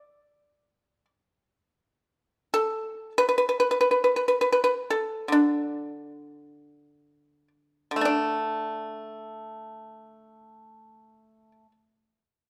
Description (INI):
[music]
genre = chinese traditional, Chinese solo plucked strings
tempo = free time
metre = none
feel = none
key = unclear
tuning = A4 = 440 Hz
[part]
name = pipa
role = solo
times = 0.0-11.7 s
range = D3 to D5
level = -26 LUFS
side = equal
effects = none
[sound]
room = light reverb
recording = none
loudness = -25 LUFS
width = mono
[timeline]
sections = 0.0-8.0 A section; 8.0-12.5 B section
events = slowing down 0.0-8.0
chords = none